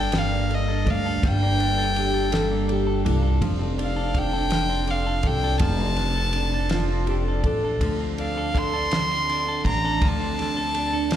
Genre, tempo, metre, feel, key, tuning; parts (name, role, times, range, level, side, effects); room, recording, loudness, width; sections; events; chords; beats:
six-eight pop ballad; 55 BPM (dotted quarters); 6/8; straight; G minor; A4 = 439 Hz
warm violin; melody; 0.0-11.2 s; Eb5 to C6; -26 LUFS; left 1 dB; slapback echo, ping-pong delay
fingerpicked plugged-in steel-string acoustic guitar; accompaniment; 0.0-11.2 s; G2 to A4; -28 LUFS; right 2 dB; double-tracked left and right, slapback echo
clean electric guitar; arpeggios; 0.0-11.2 s; F3 to A4; -32 LUFS; left 2 dB; phaser, slapback echo
upright bass; bass; 0.0-11.2 s; F1 to D2; -25 LUFS; equal
damped 70s drum kit; drums; 0.1-11.2 s; kick drum, ride cymbal, snare drum; -30 LUFS; equal
mellow French horn section; second line; 2.0-11.2 s; D4 to A4; -29 LUFS; left 1 dB; slapback echo, ping-pong delay
little or no reverb; live gig heard through the venue's PA, club reverb; -21 LUFS; side -10 dB against mid
0.0-11.2 A section
0.0 Gmadd9; 3.4 F6; 7.8 Dm7
0.14 | 1.24 2.33 | 3.42 4.51 | 5.61 6.70 | 7.81 8.91 | 10.02 11.11